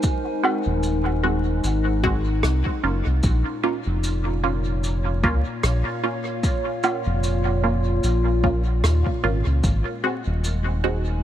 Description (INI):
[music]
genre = ambient dub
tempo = 75 BPM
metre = 4/4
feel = swing 57% on 16ths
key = Bb minor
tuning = A4 = 441 Hz
[part]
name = warbly tape-like pad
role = sustained chords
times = 0.0-11.2 s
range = Bb2 to Ab5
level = -27 LUFS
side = left 1 dB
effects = chorus, built-in reverb
[part]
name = filtered dub chord stab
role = stabs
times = 0.0-11.1 s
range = Ab3 to Gb4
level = -27 LUFS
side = right 2 dB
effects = phaser, dub echo
[part]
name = electronic kick drum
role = drums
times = 0.0-9.8 s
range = none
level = -23 LUFS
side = equal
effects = overdrive
[part]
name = shaker, woodblock and rim click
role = drums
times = 0.0-10.6 s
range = none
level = -29 LUFS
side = equal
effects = dub echo
[part]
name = round analog bass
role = bass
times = 0.7-11.2 s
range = Eb1 to Eb2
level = -22 LUFS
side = equal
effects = none
[sound]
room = small room ambience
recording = vinyl crackle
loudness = -20 LUFS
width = side -11 dB against mid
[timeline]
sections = 0.0-11.2 A section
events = none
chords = 0.0 Ab7; 3.2 Bbm; 9.6 Ab7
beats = | 0.04 0.84 1.64 2.44 | 3.24 4.04 4.84 5.64 | 6.44 7.24 8.04 8.84 | 9.64 10.44